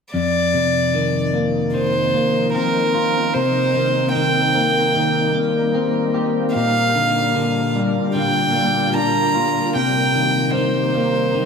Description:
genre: post-rock.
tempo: 75 BPM.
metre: 4/4.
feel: straight.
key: C minor.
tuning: A4 = 439 Hz.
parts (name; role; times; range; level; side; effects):
rich violin; melody; 0.1-11.5 s; Bb4 to Bb5; -19 LUFS; right 2 dB; digital delay.
shimmering ambient pad; sustained chords; 1.1-11.5 s; Bb2 to Bb4; -25 LUFS; right 1 dB; chorus, built-in reverb.
electric guitar at the edge of break-up; arpeggios; 0.1-11.5 s; F2 to G4; -19 LUFS; left 2 dB; digital delay.
room: wet large studio reverb, RT60 0.8 s, small room ambience.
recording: none.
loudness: -16 LUFS.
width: side -6 dB against mid.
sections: 0.1-11.5 A section.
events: none.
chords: 0.1 F7sus4; 3.4 Cm7; 6.6 Gm7/Bb; 9.8 Cm7.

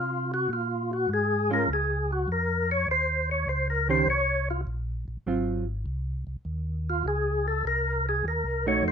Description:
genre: jazz.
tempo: 101 BPM.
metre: 4/4.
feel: swing 69% on 8ths.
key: Ab mixolydian.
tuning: A4 = 440 Hz.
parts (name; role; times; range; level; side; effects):
percussive tonewheel organ; melody; 0.0-8.9 s; F4 to Db5; -26 LUFS; left 1 dB; slow rotary speaker, overdrive, chorus vibrato.
mellow tonewheel organ; bass; 0.0-8.9 s; Ab1 to C3; -30 LUFS; equal; chorus vibrato, slow rotary speaker.
hollow-body jazz guitar; accompaniment; 1.5-8.9 s; Eb3 to C5; -27 LUFS; right 5 dB; none.
room: light reverb.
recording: minimal, uncompressed stereo recording.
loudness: -25 LUFS.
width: side -7 dB against mid.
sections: 0.0-8.9 A section.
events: tonewheel organ solo 0.0-8.9.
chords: 0.5 Bbm7; 2.9 Eb5; 5.3 Ab6; 7.7 Cm7b5.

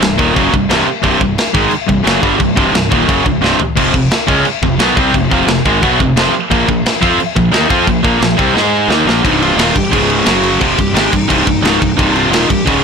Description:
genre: heavy metal.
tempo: 176 BPM.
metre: 4/4.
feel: straight.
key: C minor.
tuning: A4 = 439 Hz.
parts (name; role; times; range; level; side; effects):
distorted electric guitar; riff; 0.0-12.8 s; C2 to Ab4; -15 LUFS; left 12 dB; distortion.
tight distorted guitar; riff; 0.0-12.8 s; C2 to Ab4; -14 LUFS; right 14 dB; distortion.
fuzz fingered electric bass; bass; 0.0-12.8 s; C1 to Ab2; -20 LUFS; equal; overdrive.
tight metal drum kit; drums; 0.0-12.8 s; china cymbal, crash cymbal, kick drum, snare drum, toms; -15 LUFS; left 1 dB; soft clipping on kick.
high-gain lead guitar; melody; 9.2-12.8 s; Eb4 to Ab4; -19 LUFS; left 1 dB; distortion.
room: little or no reverb.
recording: blown-out, overdriven recording, overdrive.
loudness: -10 LUFS.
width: side -6 dB against mid.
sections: 0.0-9.2 A section; 9.2-12.8 B section.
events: drum fill 3.4-3.8, 8.6-9.2.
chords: 0.0 Cm; 3.8 F5; 6.5 Bb5; 8.6 Ab5; 8.9 Bb5; 9.2 Cm; 9.9 Db5; 10.3 F#5; 10.6 Cm.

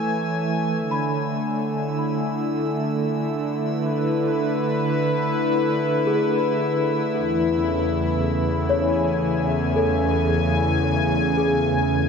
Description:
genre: ambient.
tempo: free time.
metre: none.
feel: none.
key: A major.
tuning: A4 = 440 Hz.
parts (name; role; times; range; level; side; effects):
warm analog pad; sustained chords; 0.0-12.1 s; E2 to G#5; -20 LUFS; equal; chorus, tremolo.
small celesta; arpeggios; 0.0-12.1 s; G#4 to B5; -27 LUFS; left 2 dB; analog delay.
drifting glass-harmonics texture; texture; 0.0-12.1 s; E6; -42 LUFS; right 6 dB; chorus, built-in reverb.
room: wet plate reverb, RT60 2.9 s.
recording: dreamy mix soaked in reverb.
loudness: -20 LUFS.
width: side -6 dB against mid.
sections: 0.0-12.1 A section.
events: fade-out on synth texture 0.0-12.1.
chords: 0.0 Amaj7; 0.8 E7sus4; 7.2 Amaj7/E.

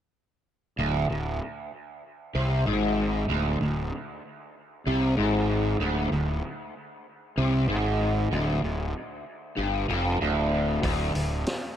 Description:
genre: psychedelic rock.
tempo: 96 BPM.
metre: 4/4.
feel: straight.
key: unclear.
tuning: A4 = 441 Hz.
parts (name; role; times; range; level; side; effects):
crunchy overdriven guitar; riff; 0.8-11.4 s; D2 to C3; -26 LUFS; equal; rotary speaker, dub echo.
fuzz fingered electric bass; bass; 0.8-11.4 s; D1 to C2; -30 LUFS; equal; overdrive.
vintage drum kit; drums; 10.8-11.6 s; hi-hat, kick drum, snare drum; -31 LUFS; equal; none.
room: light reverb, small room ambience.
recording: echo-heavy mix.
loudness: -24 LUFS.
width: side -10 dB against mid.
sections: 0.8-11.8 A section.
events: none.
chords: 0.8 D7(b5, no3).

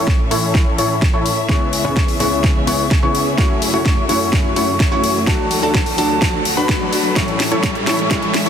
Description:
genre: EDM, festival progressive house.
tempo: 127 BPM.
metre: 4/4.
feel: straight.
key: A major.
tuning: A4 = 444 Hz.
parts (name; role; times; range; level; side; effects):
felt-muted upright piano; accompaniment; 0.0-8.5 s; A2 to F#4; -23 LUFS; left 4 dB; sidechain pumping, dub echo.
dark chamber string section; sustained chords; 0.0-8.5 s; C#2 to E5; -27 LUFS; right 2 dB; sidechain pumping.
clear concert grand piano; arpeggios; 0.0-8.5 s; A5 to C#6; -23 LUFS; left 1 dB; sidechain pumping, low-pass filter, dub echo.
supersaw stab; riff; 0.0-8.5 s; A3 to C#5; -21 LUFS; equal; sidechain pumping, low-pass filter, dub echo.
riser; sound effects; 0.0-8.5 s; none; -27 LUFS; right 1 dB; none.
electronic kick drum; drums; 0.1-8.2 s; none; -17 LUFS; equal; overdrive, studio reverb.
house drum kit; drums; 0.1-8.5 s; hi-hat, snare drum; -21 LUFS; left 1 dB; overdrive, studio reverb.
room: light reverb, small room ambience.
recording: dense, heavily limited modern master, high-pass filter.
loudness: -14 LUFS.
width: side -8 dB against mid.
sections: 0.0-8.5 A section.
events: build-up 0.0-8.5; drum fill 0.0-8.5; riser 0.0-8.5; filter sweep on supersaw synth 0.0-8.5; filter sweep on grand piano 0.0-8.5; filter sweep 0.0-8.5.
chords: 0.0 A; 1.5 C#m7; 3.4 F#m7; 5.3 D; 7.2 A.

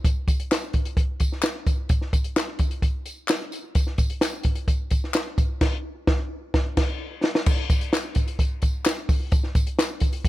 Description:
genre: soul.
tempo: 129 BPM.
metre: 4/4.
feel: straight.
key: none.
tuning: none.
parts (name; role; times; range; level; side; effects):
compact cocktail drum kit; drums; 0.0-10.3 s; crash cymbal, hi-hat, kick drum, snare drum; -22 LUFS; equal; none.
tambourine and handclaps; percussion; 0.1-10.3 s; none; -32 LUFS; left 4 dB; none.
room: little or no reverb.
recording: none.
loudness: -22 LUFS.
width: side -16 dB against mid.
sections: 0.0-7.5 A section; 7.5-10.3 A section.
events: band accent 5.6-7.5; drum fill 6.5-7.5.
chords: none.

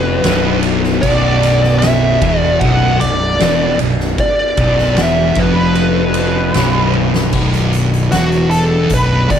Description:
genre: stoner and doom metal.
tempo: 76 BPM.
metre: 4/4.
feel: straight.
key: unclear.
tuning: A4 = 440 Hz.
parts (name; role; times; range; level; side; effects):
fuzz lead guitar; melody; 0.0-9.4 s; F#4 to F#5; -17 LUFS; equal; wah, distortion, analog delay.
phased string machine; sustained chords; 0.0-9.4 s; F#3 to F#4; -28 LUFS; left 1 dB; none.
distorted electric guitar; riff; 0.0-7.3 s; B1 to E#2; -22 LUFS; equal; distortion.
thick fuzz guitar; riff; 0.0-9.4 s; B1 to E#2; -18 LUFS; left 6 dB; distortion.
thick fuzz guitar; riff; 0.0-9.4 s; B1 to E#2; -18 LUFS; right 7 dB; distortion.
fuzz fingered electric bass; bass; 0.0-9.4 s; B0 to E#1; -19 LUFS; equal; overdrive.
oversized low-tuned drum kit; drums; 0.2-9.4 s; crash cymbal, hi-hat, kick drum, ride cymbal, snare drum, toms; -20 LUFS; equal; none.
room: light reverb, small room ambience.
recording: none.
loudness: -11 LUFS.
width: side -8 dB against mid.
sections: 0.0-7.4 A section; 7.4-9.4 B section.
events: drum fill 7.0-7.4; lead electric guitar solo 7.4-9.4.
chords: 0.0 Bm.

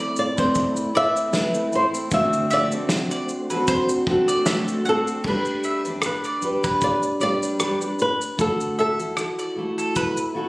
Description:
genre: acoustic pop.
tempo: 76 BPM.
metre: 4/4.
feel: swing 55% on 16ths.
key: D mixolydian.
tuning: A4 = 439 Hz.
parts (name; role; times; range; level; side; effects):
flamenco guitar; melody; 0.0-10.3 s; A4 to E5; -24 LUFS; equal; none.
fingerpicked steel-string acoustic guitar; accompaniment; 0.0-10.5 s; D3 to B4; -24 LUFS; equal; double-tracked left and right.
mellow tonewheel organ; sustained chords; 0.0-5.2 s; A3 to C5; -30 LUFS; equal; chorus vibrato, fast rotary speaker.
bowl-back mandolin; arpeggios; 0.0-10.2 s; A4 to F#5; -25 LUFS; right 1 dB; none.
loose indie drum kit; drums; 0.2-10.3 s; crash cymbal, kick drum, rim click, shaker, snare drum; -27 LUFS; equal; none.
room: moderate studio ambience, RT60 0.5 s.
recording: recorded on a phone in the room, studio reverb.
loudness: -20 LUFS.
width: side -22 dB against mid.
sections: 0.0-5.2 A section; 5.2-10.5 B section.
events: none.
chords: 0.0 Amadd9; 2.1 D7; 5.2 G; 8.4 Dadd9.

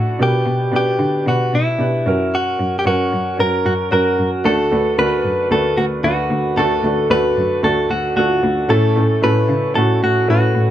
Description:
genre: piano-driven pop.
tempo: 113 BPM.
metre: 4/4.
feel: straight.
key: unclear.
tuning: A4 = 440 Hz.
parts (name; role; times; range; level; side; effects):
direct-recorded clean electric guitar; melody; 0.0-10.7 s; E4 to B4; -18 LUFS; equal; none.
warm upright piano; accompaniment; 0.0-10.7 s; A2 to B4; -19 LUFS; right 1 dB; none.
warm cello; bass; 0.0-10.7 s; D2 to D3; -20 LUFS; equal; none.
room: moderate studio ambience, RT60 0.5 s.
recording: band playing live in one room.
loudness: -14 LUFS.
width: side -11 dB against mid.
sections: 0.0-4.5 A section; 4.5-10.7 B section.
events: none.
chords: 0.2 G/B; 2.1 F#; 4.5 D; 8.7 A.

